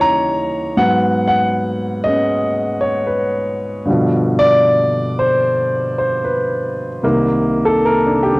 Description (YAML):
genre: solo jazz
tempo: 77 BPM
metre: 4/4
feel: swing 66% on 8ths, rubato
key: unclear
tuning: A4 = 440 Hz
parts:
  - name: warm grand piano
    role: solo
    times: 0.0-8.4 s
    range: C2 to A#5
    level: -14 LUFS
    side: equal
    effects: cassette tape
room: moderate spring reverb, RT60 2.7 s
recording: home recording on cassette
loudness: -14 LUFS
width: side -24 dB against mid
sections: 0.0-7.0 A section; 7.0-8.4 B section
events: grand piano solo 7.0-8.4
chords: 0.0 D#7b9; 0.8 G#m7; 3.9 G7; 7.0 Cm7